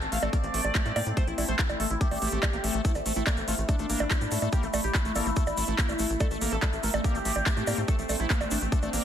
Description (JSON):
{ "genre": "psychedelic trance", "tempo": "143 BPM", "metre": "4/4", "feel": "straight", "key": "A phrygian", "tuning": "A4 = 440 Hz", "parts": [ { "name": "overdriven synth lead", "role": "melody", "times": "0.0-9.0 s", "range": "A3 to F5", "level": "-34 LUFS", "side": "equal", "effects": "distortion, chorus, phaser, sidechain pumping, dub echo" }, { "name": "overtone-sweeping drone", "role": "sustained chords", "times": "0.0-9.0 s", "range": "A3 to E4", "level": "-36 LUFS", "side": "equal", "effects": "chorus, built-in reverb, sidechain pumping" }, { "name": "tight sequencer bass", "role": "bass", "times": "0.0-9.0 s", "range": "A1 to A2", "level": "-32 LUFS", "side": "equal", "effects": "none" }, { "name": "big-room dance drum kit", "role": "drums", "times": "0.0-9.0 s", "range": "bongos, handclaps, hi-hat", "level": "-31 LUFS", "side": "right 1 dB", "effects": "none" }, { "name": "overdriven acid bass", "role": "riff", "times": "0.1-9.0 s", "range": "A3 to Bb3", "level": "-34 LUFS", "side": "moving between left 5 dB and right 6 dB", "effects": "distortion, auto-pan, sidechain pumping" }, { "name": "electronic kick drum", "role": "drums", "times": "0.3-8.8 s", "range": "none", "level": "-27 LUFS", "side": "equal", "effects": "none" }, { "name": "egg shaker", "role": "percussion", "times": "2.8-9.0 s", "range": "none", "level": "-41 LUFS", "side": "left 3 dB", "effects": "none" } ], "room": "light reverb, digital ambience", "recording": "dense, heavily limited modern master", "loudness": "-25 LUFS", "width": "side -9 dB against mid", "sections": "0.0-9.0 A section", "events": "none", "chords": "0.0 A5", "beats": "0.33 0.75 | 1.17 1.59 2.01 2.43 | 2.85 3.27 3.69 4.11 | 4.53 4.95 5.37 5.79 | 6.21 6.62 7.04 7.46 | 7.88 8.30 8.72" }